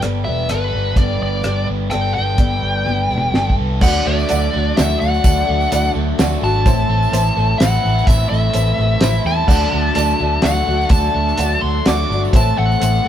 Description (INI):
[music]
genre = folk rock and heartland rock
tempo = 127 BPM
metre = 3/4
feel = straight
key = unclear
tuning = A4 = 439 Hz
[part]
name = picked twelve-string acoustic guitar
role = accompaniment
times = 0.0-13.1 s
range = A2 to A4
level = -25 LUFS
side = left 6 dB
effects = none
[part]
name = overdriven electric guitar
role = riff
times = 0.0-13.1 s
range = A2 to A4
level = -24 LUFS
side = right 1 dB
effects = none
[part]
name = fingered electric bass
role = bass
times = 0.0-13.1 s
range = E1 to E2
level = -19 LUFS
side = equal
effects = none
[part]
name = cloth-damped thuddy drum kit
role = drums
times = 0.0-12.9 s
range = crash cymbal, hi-hat, kick drum, rim click, snare drum, toms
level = -17 LUFS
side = equal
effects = none
[part]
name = bluesy overdriven lead guitar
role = melody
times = 0.2-13.1 s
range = B4 to D6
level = -20 LUFS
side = left 1 dB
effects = distortion
[part]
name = warm upright piano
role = accompaniment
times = 3.8-13.1 s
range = A4 to A5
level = -27 LUFS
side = right 4 dB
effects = none
[part]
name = tonewheel organ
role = sustained chords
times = 3.8-13.1 s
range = E3 to A4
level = -31 LUFS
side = right 1 dB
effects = none
[part]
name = tambourine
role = percussion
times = 3.8-13.0 s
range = none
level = -34 LUFS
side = right 5 dB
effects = none
[sound]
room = moderate stone room reverb, RT60 1.0 s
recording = band playing live in one room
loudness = -14 LUFS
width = side -10 dB against mid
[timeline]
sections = 0.0-3.8 A section; 3.8-13.1 B section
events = drum fill 2.9-3.8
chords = 0.0 Gadd9; 3.8 D; 6.7 Am; 9.5 D; 12.3 Am